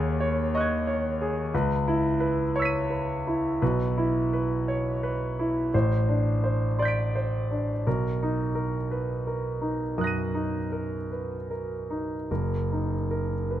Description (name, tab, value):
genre	classical, impressionist solo piano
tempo	49-60 BPM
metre	4/4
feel	rubato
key	unclear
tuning	A4 = 440 Hz
part	clear concert grand piano	solo	0.0-13.6 s	F#1 to D#7	-25 LUFS	equal	none
room	light reverb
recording	close, detailed microphones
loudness	-25 LUFS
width	side -12 dB against mid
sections	0.0-13.6 A section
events	none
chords	0.0 D#m7; 1.5 C#m9; 3.6 Bsus24; 5.7 Am11; 7.9 Bmaj7; 12.3 F#6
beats	0.53 1.53 2.55 | 3.62 4.68 5.73 6.80 | 7.86 8.90 9.96 11.10 | 12.30 13.49